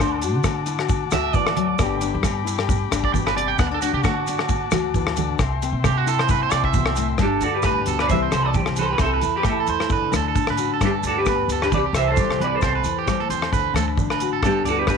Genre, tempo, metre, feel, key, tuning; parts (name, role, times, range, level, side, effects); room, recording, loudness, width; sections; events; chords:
highlife guitar band; 133 BPM; 4/4; swing 55% on 16ths; G major; A4 = 440 Hz
nylon-string guitar; accompaniment; 0.0-15.0 s; G2 to G4; -27 LUFS; left 11 dB
combo organ; sustained chords; 0.0-7.2 s; E5 to D6; -31 LUFS; left 12 dB
electric guitar at the edge of break-up; arpeggios; 0.0-15.0 s; F#4 to G5; -25 LUFS; right 14 dB; tape echo
upright bass; bass; 0.0-15.0 s; G1 to D3; -27 LUFS; equal
warm soul drum kit; drums; 0.0-15.0 s; hi-hat, kick drum, rim click; -25 LUFS; left 2 dB
agogo bells; percussion; 0.0-15.0 s; -32 LUFS; left 14 dB
congas; percussion; 0.0-14.7 s; -30 LUFS; right 11 dB
shekere; percussion; 0.0-15.0 s; -30 LUFS; right 5 dB
semi-hollow electric guitar; melody; 7.2-15.0 s; D4 to E5; -23 LUFS; right 1 dB; lush chorus
light reverb; 1960s-style stereo with parts hard left and right; -18 LUFS; side -6 dB against mid
0.0-7.2 A section; 7.2-15.0 B section
clean electric guitar solo 0.0-7.2
0.0 D; 1.8 G; 3.6 D; 5.4 C; 7.2 Gadd9; 8.1 C; 9.9 D; 10.8 Gadd9; 11.7 C; 13.5 D; 14.4 Gadd9